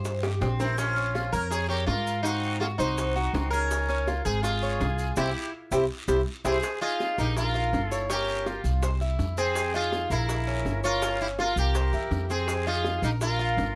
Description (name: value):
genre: latin, Cuban son and guajira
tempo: 164 BPM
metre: 4/4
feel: straight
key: F minor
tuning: A4 = 440 Hz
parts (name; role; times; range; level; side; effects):
- Cuban tres; arpeggios; 0.0-13.7 s; C4 to Db5; -34 LUFS; equal; none
- upright bass; bass; 0.0-13.8 s; G1 to Ab2; -31 LUFS; equal; none
- maracas; percussion; 0.0-13.8 s; none; -46 LUFS; equal; none
- bongos; percussion; 0.1-13.8 s; none; -37 LUFS; equal; none
- guiro; percussion; 0.1-13.8 s; none; -48 LUFS; equal; none
- sitar; melody; 0.6-13.8 s; C4 to Bb4; -32 LUFS; equal; none
- breathy bright jazz flute; second line; 0.6-13.8 s; E4 to Db5; -37 LUFS; equal; none
room: light reverb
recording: close, detailed microphones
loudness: -27 LUFS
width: mono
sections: 0.0-6.6 A section; 6.6-13.8 B section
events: drum fill 0.2-0.8, 5.9-6.6; band accent 5.2-6.6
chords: 0.0 C; 0.8 Bbm; 2.2 Ab7; 3.7 Db; 5.2 C; 6.6 Fm7; 7.4 Bbm; 8.1 Gm7b5; 8.8 C; 9.6 Fm7; 10.3 Bbm; 11.0 Gm7b5; 11.8 C7; 12.5 Fm7; 13.2 Bb5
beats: 0.05 0.42 | 0.78 1.15 1.52 1.88 | 2.25 2.62 2.98 3.35 | 3.71 4.08 4.44 4.81 | 5.17 5.54 5.91 6.27 | 6.64 7.00 7.37 7.73 | 8.10 8.46 8.83 9.20 | 9.56 9.93 10.29 10.66 | 11.02 11.39 11.75 12.12 | 12.48 12.85 13.21 13.58